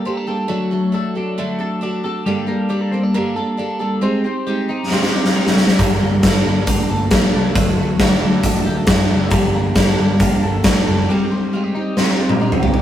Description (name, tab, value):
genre	jangly indie pop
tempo	136 BPM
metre	4/4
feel	straight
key	G harmonic minor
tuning	A4 = 441 Hz
part	picked steel-string acoustic guitar	accompaniment	0.0-12.8 s	G2 to A4	-22 LUFS	right 3 dB	none
part	twelve-string electric guitar	arpeggios	0.0-12.8 s	F#3 to A4	-22 LUFS	left 3 dB	phaser, tape echo
part	big rock drum kit	drums	4.9-12.8 s	hi-hat, kick drum, snare drum, toms	-15 LUFS	equal	none
part	vintage muted picked electric bass	bass	5.8-11.1 s	F#1 to F#2	-23 LUFS	equal	none
room	light reverb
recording	rough rehearsal-room recording, warm saturation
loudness	-15 LUFS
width	side -11 dB against mid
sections	0.0-12.8 A section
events	drum fill 4.9-5.8, 12.0-12.8; break 11.1-12.8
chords	0.5 D; 2.3 Gmadd9; 4.0 Abmaj7; 5.8 Gmadd9; 7.6 D; 9.3 Gmadd9; 11.1 Abmaj7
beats	0.05 | 0.49 0.94 1.38 1.82 | 2.26 2.70 3.14 3.58 | 4.02 4.47 4.91 5.35 | 5.79 6.23 6.67 7.11 | 7.55 8.00 8.44 8.88 | 9.32 9.76 10.20 10.65 | 11.09 11.53 11.97 12.41